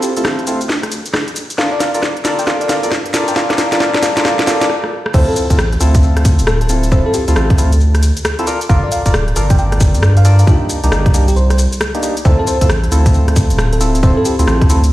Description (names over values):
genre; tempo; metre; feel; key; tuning
UK garage, two-step garage; 135 BPM; 4/4; swing 63% on 16ths; D minor; A4 = 440 Hz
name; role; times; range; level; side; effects
bell-like FM electric piano; melody; 0.0-14.7 s; F4 to G5; -21 LUFS; right 1 dB; chorus, tremolo, low-pass filter, digital delay
percussive organ stab; stabs; 0.0-14.8 s; Bb3 to D5; -18 LUFS; left 1 dB; chorus, digital delay
garage drum kit; drums; 0.0-14.9 s; crash cymbal, hi-hat, rim click, shaker, snare drum; -19 LUFS; equal; none
saturated sub bass; bass; 0.2-14.9 s; D1 to G2; -13 LUFS; equal; high-pass filter
electronic kick drum; drums; 0.2-14.7 s; none; -13 LUFS; equal; high-pass filter on kick, high-pass filter on room
room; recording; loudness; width
light reverb, digital ambience; played on a big sound system in a bare room, large studio reverb; -11 LUFS; side -15 dB against mid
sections
0.0-5.1 A section; 5.1-14.9 B section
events
build-up 0.0-5.1; drum fill 0.0-4.7, 4.7-5.1; stop 4.7-5.1; drop 5.1-14.9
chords
0.0 Dm9; 1.4 Gm9; 3.4 Csus2; 5.1 Dm9; 8.5 Gm9; 10.5 Cm9; 12.3 Dm9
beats
0.25 0.69 1.14 | 1.58 2.03 2.47 2.92 | 3.36 3.81 4.25 4.70 | 5.14 5.58 6.03 6.47 | 6.92 7.36 7.81 8.25 | 8.70 9.14 9.58 10.03 | 10.47 10.92 11.36 11.81 | 12.25 12.70 13.14 13.58 | 14.03 14.47 14.92